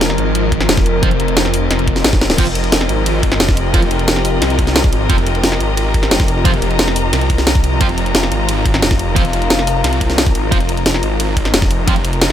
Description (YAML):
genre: dark technical drum and bass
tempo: 177 BPM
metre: 4/4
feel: straight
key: F minor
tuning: A4 = 438 Hz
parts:
  - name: metallic inharmonic drone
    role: sustained chords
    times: 0.0-12.3 s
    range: F3 to Bb4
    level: -21 LUFS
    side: left 1 dB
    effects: chorus, built-in reverb, sidechain pumping
  - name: wide detuned saw bass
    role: bass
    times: 0.0-12.3 s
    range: F1 to C2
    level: -17 LUFS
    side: equal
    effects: chorus, tube saturation
  - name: drum and bass drum kit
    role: drums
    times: 0.0-12.3 s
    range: crash cymbal, hi-hat, ride cymbal, snare drum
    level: -17 LUFS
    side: equal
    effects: none
  - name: clear symphonic string section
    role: texture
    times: 0.0-12.3 s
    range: F4 to Bb5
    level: -22 LUFS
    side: left 3 dB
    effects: sidechain pumping
  - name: electronic kick drum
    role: drums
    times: 0.5-11.9 s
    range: none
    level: -15 LUFS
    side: equal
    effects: none
  - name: sludgy distorted guitar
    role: stabs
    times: 1.0-11.9 s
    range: F3 to F4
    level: -22 LUFS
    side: right 3 dB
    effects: overdrive, tape echo
room: digital ambience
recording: none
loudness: -12 LUFS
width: side -10 dB against mid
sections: 0.0-12.3 A section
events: drum fill 2.1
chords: 0.0 Fmadd9